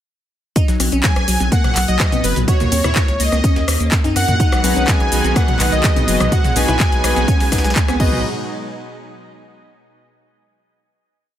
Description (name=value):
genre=progressive house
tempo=125 BPM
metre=4/4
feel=straight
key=B major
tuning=A4 = 439 Hz
part: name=glassy wavetable pluck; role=arpeggios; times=0.6-8.2 s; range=F#3 to F#4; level=-23 LUFS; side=left 2 dB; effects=chorus, sidechain pumping, tape echo
part: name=breakbeat sampler-style drum kit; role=drums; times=0.6-8.0 s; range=hi-hat, snare drum, tambourine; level=-30 LUFS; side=equal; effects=none
part: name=electronic kick drum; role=drums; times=0.6-8.1 s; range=none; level=-16 LUFS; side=equal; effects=overdrive
part: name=house drum kit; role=drums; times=0.6-8.1 s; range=cabasa, crash cymbal, handclaps, hi-hat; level=-22 LUFS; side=left 1 dB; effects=overdrive, sidechain pumping on hats, sidechain pumping on perc, sidechain pumping on cymbals
part: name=saturated sub bass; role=bass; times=0.7-8.2 s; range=F#1 to F#2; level=-20 LUFS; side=equal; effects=sidechain pumping
part: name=punchy analog drum machine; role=percussion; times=0.8-8.2 s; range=congas, rim click, toms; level=-25 LUFS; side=left 1 dB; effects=sidechain pumping on snare, sidechain pumping on perc, sidechain pumping on toms
part: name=soft supersaw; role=melody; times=1.0-8.2 s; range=B4 to G#5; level=-21 LUFS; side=equal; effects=cassette tape, sidechain pumping, tape echo
part: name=supersaw pad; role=sustained chords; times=4.4-8.2 s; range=B2 to D#4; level=-26 LUFS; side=right 1 dB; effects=sidechain pumping
part: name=chorused polysynth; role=stabs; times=4.6-8.2 s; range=D#4 to B4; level=-24 LUFS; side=left 2 dB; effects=sidechain pumping, tape echo
room=digital ambience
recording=none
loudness=-13 LUFS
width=side -11 dB against mid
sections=0.6-8.2 drop; 8.2-10.2 final hit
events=drop 0.6-8.2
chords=0.6 B5; 2.5 D#m7; 4.4 B6; 6.3 G#m7/B; 8.0 B6; 8.2 N.C.